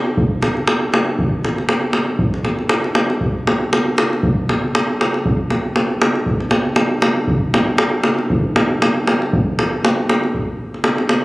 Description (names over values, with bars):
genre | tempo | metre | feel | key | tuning
balkan folk | 118 BPM | 2/4 | swing 55% on 16ths | none | none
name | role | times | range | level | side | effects
davul | percussion | 0.2-11.2 s | none | -15 LUFS | equal | none
room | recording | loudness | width
wet recital hall reverb, RT60 1.6 s | recorded on a phone in the room, club reverb | -15 LUFS | side -20 dB against mid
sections
0.0-3.2 A section; 3.2-11.2 B section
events
none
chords
none